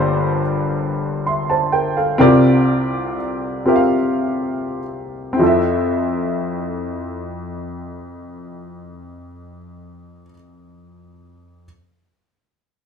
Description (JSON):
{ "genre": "gospel", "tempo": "32-48 BPM (dotted quarters)", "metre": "6/8", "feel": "straight", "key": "F major", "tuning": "A4 = 440 Hz", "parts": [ { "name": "warm upright piano", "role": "solo", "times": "0.0-11.7 s", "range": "G1 to C6", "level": "-17 LUFS", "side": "equal", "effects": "none" } ], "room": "wet studio reverb, RT60 0.5 s", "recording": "band playing live in one room", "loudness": "-16 LUFS", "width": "side -6 dB against mid", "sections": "0.0-5.4 A section; 5.4-9.1 B section", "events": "slowing down 0.0-5.4", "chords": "0.0 Gm11; 2.2 C9sus4; 5.4 Fmaj7" }